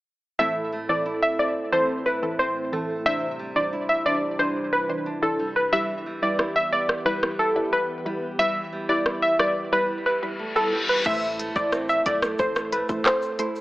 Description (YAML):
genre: dancehall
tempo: 90 BPM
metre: 4/4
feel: straight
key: unclear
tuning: A4 = 440 Hz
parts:
  - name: glassy wavetable pluck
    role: melody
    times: 0.4-13.5 s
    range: A4 to E5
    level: -23 LUFS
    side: equal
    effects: chorus
  - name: punchy chord stab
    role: accompaniment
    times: 0.4-13.6 s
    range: E3 to C5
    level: -30 LUFS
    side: equal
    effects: chorus, phaser
  - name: glassy FM pad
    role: sustained chords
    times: 0.4-11.0 s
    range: E2 to G4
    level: -37 LUFS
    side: equal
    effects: ensemble chorus, built-in reverb, sidechain pumping
  - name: flamenco guitar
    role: arpeggios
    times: 0.4-13.6 s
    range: A2 to E4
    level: -32 LUFS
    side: right 2 dB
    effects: tape echo
  - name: afro-pop drum kit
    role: drums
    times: 6.4-13.6 s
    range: crash cymbal, handclaps, hi-hat, kick drum, rim click, shaker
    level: -26 LUFS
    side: equal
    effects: none
  - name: reverse cymbal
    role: sound effects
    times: 10.1-11.1 s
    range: none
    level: -30 LUFS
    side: left 2 dB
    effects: none
  - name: punchy sub bass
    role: bass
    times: 11.1-13.0 s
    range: A1 to B1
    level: -45 LUFS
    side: equal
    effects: none
room: light reverb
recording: AM radio sound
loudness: -21 LUFS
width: side -17 dB against mid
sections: 0.4-11.1 A section; 11.1-13.6 B section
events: reverse cymbal 10.1-11.1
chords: 0.4 Am; 3.1 Cadd9; 5.7 Em; 11.1 Am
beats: | 0.39 1.06 1.73 2.39 | 3.06 3.73 4.39 5.06 | 5.73 6.39 7.06 7.73 | 8.39 9.06 9.73 10.39 | 11.06 11.73 12.39 13.06